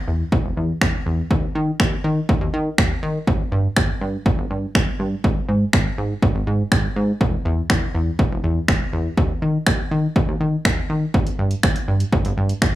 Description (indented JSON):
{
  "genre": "dance-pop",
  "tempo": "122 BPM",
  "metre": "4/4",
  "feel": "straight",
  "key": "unclear",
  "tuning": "A4 = 440 Hz",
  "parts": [
    { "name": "plucky analog bass", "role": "bass", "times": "0.1-12.8 s", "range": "E1 to D#3", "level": "-21 LUFS", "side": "equal", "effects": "sidechain pumping" },
    { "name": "punchy analog drum machine", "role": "drums", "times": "0.3-12.7 s", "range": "finger snaps, hi-hat, kick drum", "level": "-20 LUFS", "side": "equal", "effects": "overdrive" }
  ],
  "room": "little or no reverb",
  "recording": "rough home demo mix, small room ambience",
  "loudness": "-18 LUFS",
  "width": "side -15 dB against mid",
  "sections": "0.0-12.8 A section",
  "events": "none",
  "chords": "none"
}